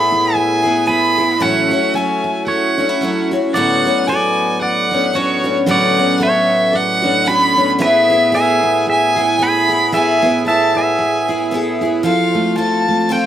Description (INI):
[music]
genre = acoustic folk duo or small band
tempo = 113 BPM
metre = 4/4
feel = swing 57% on 8ths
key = unclear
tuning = A4 = 442 Hz
[part]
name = rich fiddle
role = melody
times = 0.0-13.3 s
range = C#5 to B5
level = -16 LUFS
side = equal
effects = none
[part]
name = pedal steel guitar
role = second line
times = 0.0-11.5 s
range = F#4 to G#5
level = -21 LUFS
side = right 3 dB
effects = slapback echo
[part]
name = picked twelve-string acoustic guitar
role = accompaniment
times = 0.0-13.3 s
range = A2 to A4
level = -19 LUFS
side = left 3 dB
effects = slapback echo
[part]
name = hand-pumped harmonium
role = sustained chords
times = 0.0-12.0 s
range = A2 to E5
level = -25 LUFS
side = left 1 dB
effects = none
[part]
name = picked steel-string acoustic guitar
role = arpeggios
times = 0.0-13.3 s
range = F3 to A4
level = -20 LUFS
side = right 3 dB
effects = none
[sound]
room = light reverb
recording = recorded outdoors, with no room sound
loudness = -12 LUFS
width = side -10 dB against mid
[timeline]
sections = 0.0-12.1 A section; 12.1-13.3 B section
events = none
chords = 0.0 E/A; 1.4 F#m7/A; 3.5 Bmadd9/A; 7.8 E/A; 12.1 F